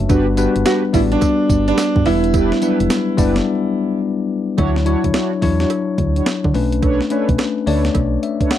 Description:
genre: R&B, new jack swing.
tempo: 107 BPM.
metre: 4/4.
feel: swing 64% on 16ths.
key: unclear.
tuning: A4 = 442 Hz.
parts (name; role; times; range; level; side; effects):
bell-like tine electric piano; accompaniment; 0.0-8.6 s; F#3 to A5; -18 LUFS; left 6 dB; none.
solid FM bass; bass; 0.0-8.2 s; E1 to D3; -19 LUFS; right 1 dB; none.
mellow synth brass; stabs; 0.1-8.5 s; D4 to C#5; -23 LUFS; right 5 dB; chorus.
clean 12-bit digital drum machine; drums; 0.1-8.6 s; hi-hat, kick drum, snare drum, tambourine; -20 LUFS; right 1 dB; none.
cowbell; percussion; 0.1-8.6 s; none; -31 LUFS; right 14 dB; none.
clear baby grand piano; melody; 0.7-4.0 s; D4 to F#4; -19 LUFS; right 5 dB; slapback echo.
room: light reverb.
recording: dry, close 1970s-style studio recording.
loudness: -14 LUFS.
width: side -11 dB against mid.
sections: 0.0-4.6 A section; 4.6-8.6 B section.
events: break 3.5-4.6; tine electric piano fill 7.9-8.6.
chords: 0.1 Gmaj7; 2.1 Em7; 4.6 Dmaj9; 6.5 Bm9.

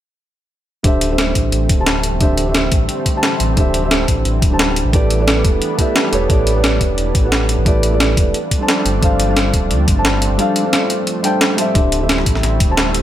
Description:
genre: liquid drum and bass.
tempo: 176 BPM.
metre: 4/4.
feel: swing 54% on 16ths.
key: D minor.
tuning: A4 = 438 Hz.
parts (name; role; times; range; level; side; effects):
felt-muted upright piano; accompaniment; 0.8-13.0 s; D3 to A5; -18 LUFS; right 1 dB; dub echo.
lush unison pad; sustained chords; 0.8-13.0 s; E3 to E4; -24 LUFS; equal; chorus, sidechain pumping.
sub bass with octave; bass; 0.8-13.0 s; D1 to D2; -19 LUFS; equal; none.
breakbeat sampler-style drum kit; drums; 0.8-13.0 s; hi-hat, snare drum; -18 LUFS; equal; small room ambience.
electronic kick drum; drums; 0.8-12.7 s; none; -16 LUFS; equal; overdrive, small room ambience.
room: light reverb, digital ambience.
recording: none.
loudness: -13 LUFS.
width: side -12 dB against mid.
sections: 0.8-13.0 A section.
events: none.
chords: 0.8 D9sus4; 4.9 A9sus4; 8.3 G9sus4; 11.8 D9sus4.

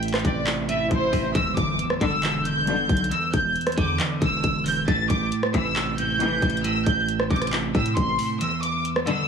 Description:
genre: hip hop, trap.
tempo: 136 BPM.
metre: 4/4.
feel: half-time.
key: E minor.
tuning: A4 = 441 Hz.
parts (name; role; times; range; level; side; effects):
clean electric guitar; accompaniment; 0.0-9.3 s; E2 to D3; -27 LUFS; right 3 dB; low-pass filter.
hard-hitting 808-style bass; bass; 0.0-8.2 s; E1 to A2; -30 LUFS; equal; none.
trap drum kit; drums; 0.0-9.2 s; handclaps, hi-hat, kick drum, rim click; -26 LUFS; equal; none.
swell and impact; sound effects; 0.2-3.1 s; none; -33 LUFS; left 1 dB; none.
warm studio violin section; melody; 0.2-9.3 s; C5 to A6; -25 LUFS; equal; low-pass filter, digital delay.
clear studio string section; stabs; 2.0-9.2 s; G2 to E3; -29 LUFS; left 6 dB; none.
room: light reverb.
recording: heavily compressed radio sound.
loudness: -21 LUFS.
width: side -6 dB against mid.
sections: 0.0-1.4 A section; 1.4-9.3 B section.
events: swell 0.2-1.4; impact 1.4-3.1; kick muted 8.4-9.3.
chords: 0.0 Am; 1.4 Em7; 4.9 Am7; 8.4 E7(no3).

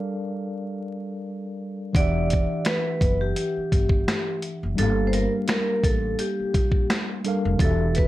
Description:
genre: lo-fi hip hop.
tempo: 85 BPM.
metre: 4/4.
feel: swing 55% on 16ths.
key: unclear.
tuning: A4 = 440 Hz.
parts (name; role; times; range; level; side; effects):
mellow tine electric piano; accompaniment; 0.0-8.1 s; E3 to F#5; -28 LUFS; equal; medium stereo tremolo, low-pass filter.
dusty soul sampler-style drum kit; drums; 1.9-8.1 s; finger snaps, hi-hat, kick drum, snare drum; -23 LUFS; equal; vintage 12-bit sampler grit.
vibraphone with medium hard mallets; melody; 2.0-8.1 s; G4 to D5; -27 LUFS; equal; low-pass filter.
upright bass; bass; 2.0-8.1 s; E1 to Bb1; -26 LUFS; equal; none.
room: light reverb.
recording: vinyl crackle.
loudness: -21 LUFS.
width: side -15 dB against mid.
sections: 0.0-2.0 A section; 2.0-8.1 B section.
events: none.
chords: 0.0 Gm9; 2.0 Em9; 4.8 Gm9.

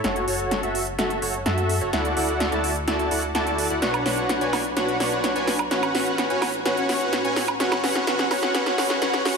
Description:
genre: EDM, festival progressive house.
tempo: 127 BPM.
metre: 4/4.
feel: straight.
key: F# minor.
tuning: A4 = 437 Hz.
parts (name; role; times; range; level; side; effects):
supersaw chords; riff; 0.0-9.4 s; C#4 to A5; -23 LUFS; equal; low-pass filter, dub echo.
wide detuned saw bass; bass; 0.0-9.4 s; F#1 to F#2; -33 LUFS; equal; chorus.
big-room dance drum kit; drums; 0.0-9.3 s; hi-hat, snare drum, woodblock; -26 LUFS; equal; overdrive, high-pass filter on hats, high-pass filter on toms, high-pass filter on snare, high-pass filter on perc, high-pass filter on room.
room: moderate huge ambient reverb, RT60 4.6 s.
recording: high-pass filter.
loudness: -21 LUFS.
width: side -5 dB against mid.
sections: 0.0-9.4 A section.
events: build-up 0.0-9.4; drum fill 0.0-9.4; filter sweep on supersaw synth 0.0-9.4.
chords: 0.0 F#m; 1.9 Dadd9; 3.8 Bmadd9; 5.7 A; 7.6 F#5.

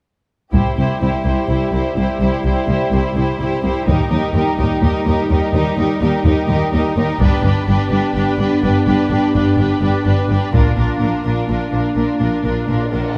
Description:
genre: cinematic, epic orchestral film score.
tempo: 252 BPM (eighths).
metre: 7/8.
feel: straight.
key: unclear.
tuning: A4 = 441 Hz.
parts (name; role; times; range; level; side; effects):
rich symphonic violin section; melody; 0.5-13.2 s; Bb4 to C5; -29 LUFS; equal; none.
warm symphonic violin section; second line; 0.5-13.2 s; F4 to G4; -26 LUFS; equal; none.
rich symphonic viola section; accompaniment; 0.5-13.2 s; D4 to E4; -26 LUFS; equal; none.
dark French horn section; sustained chords; 0.5-13.2 s; G3 to E4; -24 LUFS; equal; none.
rich studio cello section; bass; 0.5-13.0 s; C2 to Bb2; -23 LUFS; equal; none.
warm studio double bass section; bass; 0.5-13.0 s; G1 to Eb2; -22 LUFS; equal; none.
taiko ensemble; drums; 0.5-11.5 s; none; -21 LUFS; equal; none.
cymbal swell; sound effects; 12.7-13.2 s; none; -33 LUFS; equal; none.
room: moderate scoring stage reverb, RT60 1.6 s.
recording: none.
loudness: -17 LUFS.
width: mono.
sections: 0.5-13.2 A section.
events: build-up 0.5-13.2; cymbal swell 12.7-13.2.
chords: 0.5 C; 3.9 Eb; 7.2 G; 10.5 Bb.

